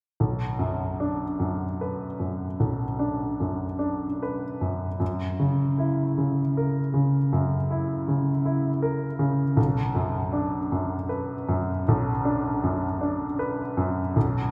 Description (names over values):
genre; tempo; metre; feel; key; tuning
classical; 52 BPM (dotted quarters); 12/8; uneven beats, rubato; B minor; A4 = 440 Hz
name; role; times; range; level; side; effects
clear baby grand piano; melody; 0.2-14.5 s; B1 to B4; -26 LUFS; equal; none
room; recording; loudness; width
wet concert hall reverb, RT60 2.4 s; heard from further back in the room; -26 LUFS; mono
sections
0.2-14.5 A section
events
none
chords
0.2 Bm; 5.0 F#7; 9.6 Bm